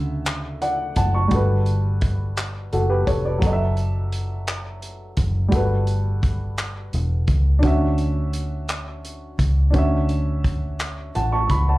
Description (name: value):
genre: slow six-eight R&B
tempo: 57 BPM (dotted quarters)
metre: 6/8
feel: straight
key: D major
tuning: A4 = 440 Hz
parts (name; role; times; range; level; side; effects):
- dark baby grand piano; accompaniment; 0.0-11.8 s; C#3 to C#6; -25 LUFS; equal; slapback echo
- vintage muted fingered electric bass; bass; 0.0-11.8 s; E1 to D2; -22 LUFS; equal; none
- warm soul drum kit; drums; 0.3-11.7 s; handclaps, hi-hat, kick drum; -24 LUFS; equal; none
room: little or no reverb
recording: live gig heard through the venue's PA, club reverb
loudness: -19 LUFS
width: side -18 dB against mid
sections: 0.0-11.8 A section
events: none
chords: 0.0 Dmaj9; 1.3 Gmaj9; 3.4 F#m7; 5.5 Gmaj9; 7.6 Dmaj9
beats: 0.26 | 1.31 2.37 | 3.42 4.47 | 5.53 6.58 | 7.63 8.68 | 9.74 10.79